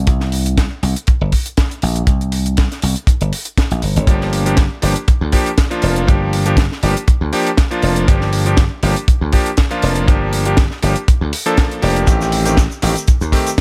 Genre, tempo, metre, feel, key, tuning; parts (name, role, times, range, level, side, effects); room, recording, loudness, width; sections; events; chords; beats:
nu-disco, nu disco; 120 BPM; 4/4; swing 53% on 16ths; G minor; A4 = 440 Hz
dry thumbed slap bass; bass; 0.0-13.3 s; F1 to Eb2; -19 LUFS; equal; sidechain pumping
kick drum; drums; 0.1-13.6 s; -16 LUFS; equal
tight funk drum kit; drums; 0.1-13.6 s; hi-hat, shaker, snare drum; -25 LUFS; equal
bright electric grand piano; accompaniment; 4.1-13.5 s; Eb3 to A4; -21 LUFS; equal; sidechain pumping
small room reverb; -15 LUFS; mono
0.0-13.6 A section
0.0 C5; 4.1 Gm7; 12.1 Am7b5
| 0.08 0.58 1.08 1.58 | 2.08 2.58 3.08 3.58 | 4.08 4.58 5.08 5.58 | 6.08 6.58 7.08 7.58 | 8.08 8.58 9.08 9.58 | 10.08 10.58 11.08 11.58 | 12.08 12.58 13.08 13.58